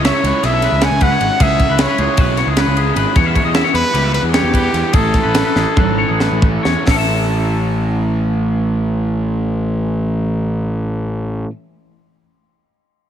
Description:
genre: math rock and midwest emo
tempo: 261-308 BPM (eighths)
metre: 9/8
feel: straight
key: A major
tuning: A4 = 440 Hz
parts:
  - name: twangy electric guitar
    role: arpeggios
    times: 0.0-11.6 s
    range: G4 to A5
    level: -20 LUFS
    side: left 6 dB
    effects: slapback echo
  - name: crunchy overdriven guitar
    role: riff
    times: 0.0-11.5 s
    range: A2 to A4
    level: -23 LUFS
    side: right 4 dB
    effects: slapback echo
  - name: fuzz picked electric bass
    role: bass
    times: 0.0-11.4 s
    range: G#1 to E2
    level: -18 LUFS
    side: equal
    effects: overdrive
  - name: crisp fusion drum kit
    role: drums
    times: 0.0-7.0 s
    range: hi-hat, kick drum, ride cymbal, snare drum, toms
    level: -17 LUFS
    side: equal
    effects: none
  - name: bright trumpet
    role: melody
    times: 0.1-6.4 s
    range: G4 to G#5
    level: -19 LUFS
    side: right 1 dB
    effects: slapback echo
room: moderate lush hall reverb, RT60 1.8 s, small room ambience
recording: big arena sound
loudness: -13 LUFS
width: side -9 dB against mid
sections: 0.0-6.9 A section; 6.9-11.0 B section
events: slowing down 3.5-6.9; drum fill 5.6-6.9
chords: 0.0 C#m7; 3.2 Em6; 4.9 Amaj7; 6.9 A

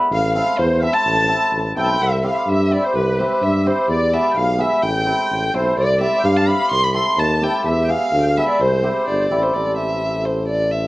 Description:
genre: klezmer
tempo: 127 BPM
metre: 2/4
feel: straight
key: C major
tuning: A4 = 440 Hz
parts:
  - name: dark violin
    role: melody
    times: 0.1-10.9 s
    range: B4 to C6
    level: -19 LUFS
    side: equal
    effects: plate reverb
  - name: musette accordion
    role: second line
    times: 0.1-9.3 s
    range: B4 to C6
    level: -25 LUFS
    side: left 1 dB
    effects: none
  - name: warm tuba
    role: bass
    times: 0.1-10.9 s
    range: G1 to G2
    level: -20 LUFS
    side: equal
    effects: none
  - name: cimbalom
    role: accompaniment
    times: 0.3-10.9 s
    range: B3 to A4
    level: -22 LUFS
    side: equal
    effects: none
room: moderate studio reverb, RT60 0.6 s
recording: worn, warbling old tape, cassette tape, warbly pitch drift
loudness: -15 LUFS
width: side -18 dB against mid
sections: 0.0-2.0 A section; 2.0-9.5 B section; 9.5-10.9 C section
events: none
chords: 0.1 Am; 2.0 C; 3.9 E7; 4.8 Am; 5.8 C; 7.7 E7; 8.6 C; 9.5 Am

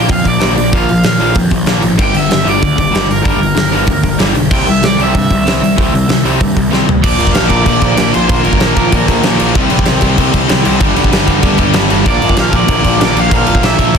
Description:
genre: punk rock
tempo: 191 BPM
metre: 4/4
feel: straight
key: unclear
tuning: A4 = 440 Hz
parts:
  - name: crunchy overdriven guitar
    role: melody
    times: 0.0-9.0, 12.1-14.0 s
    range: Bb4 to G5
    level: -17 LUFS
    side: right 2 dB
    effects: none
  - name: overdriven electric guitar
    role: riff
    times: 0.0-14.0 s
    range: G2 to C4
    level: -16 LUFS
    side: left 14 dB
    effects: none
  - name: overdriven semi-hollow guitar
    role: riff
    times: 0.0-14.0 s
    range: G2 to C4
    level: -17 LUFS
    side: right 16 dB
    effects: none
  - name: fuzz picked electric bass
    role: bass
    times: 0.0-14.0 s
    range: F1 to G2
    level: -17 LUFS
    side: equal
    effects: overdrive
  - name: big rock drum kit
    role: drums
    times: 0.1-14.0 s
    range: crash cymbal, hi-hat, kick drum, snare drum, toms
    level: -13 LUFS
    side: equal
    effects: soft clipping on kick
  - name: high-gain distorted guitar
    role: riff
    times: 7.0-14.0 s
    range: G2 to C4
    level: -19 LUFS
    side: equal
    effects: distortion
room: little or no reverb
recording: dense, heavily limited modern master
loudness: -9 LUFS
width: side -6 dB against mid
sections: 0.0-7.0 A section; 7.0-14.0 B section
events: drum fill 6.7-7.0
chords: 0.0 Bb; 2.0 Gm; 4.5 C; 7.0 Bb; 9.5 C5; 10.8 G5; 12.1 Bb

